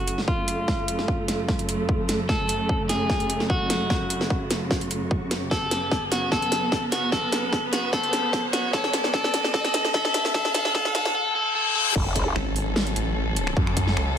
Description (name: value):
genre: heavy wobble dubstep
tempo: 149 BPM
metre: 4/4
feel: half-time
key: F# harmonic minor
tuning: A4 = 435 Hz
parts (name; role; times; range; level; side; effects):
- electric guitar at the edge of break-up; melody; 0.0-11.9 s; E#4 to A4; -26 LUFS; left 1 dB; warbly pitch drift, low-pass filter, ping-pong delay
- rich studio string section; sustained chords; 0.0-14.2 s; F#2 to A4; -29 LUFS; right 2 dB; sidechain pumping
- riser, reverse cymbal and sub drop; sound effects; 2.4-13.6 s; none; -31 LUFS; left 3 dB; none
- dubstep drum kit; drums; 0.1-14.1 s; crash cymbal, finger snaps, hi-hat, snare drum; -27 LUFS; equal; high-pass filter on hats, high-pass filter on snare, high-pass filter on cymbals
- electronic kick drum; drums; 0.3-13.9 s; none; -28 LUFS; equal; none
- growl bass; bass; 12.0-12.3 s; F#1; -25 LUFS; equal; chorus, overdrive
- snarling distorted saw bass; bass; 12.4-14.2 s; G#1 to F#2; -25 LUFS; equal; overdrive
room: light reverb, digital ambience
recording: high-pass filter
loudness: -22 LUFS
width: side -8 dB against mid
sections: 0.0-12.0 A section; 12.0-14.2 B section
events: build-up 0.0-12.0; drum fill 0.0-11.2; filter sweep on clean electric guitar 0.0-12.0; filter sweep 0.0-12.0; riser 2.4-11.2; reverse cymbal 11.2-12.0; drop 12.0-14.2; impact 12.0-13.6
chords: 0.0 F#m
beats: 0.28 | 0.68 1.08 1.49 1.89 | 2.29 2.69 3.10 3.50 | 3.90 4.30 4.71 5.11 | 5.51 5.92 6.32 6.72 | 7.12 7.53 7.93 8.33 | 8.73 9.14 9.54 9.94 | 10.34 10.75 11.15 11.55 | 11.96 12.36 12.76 13.16 | 13.57 13.97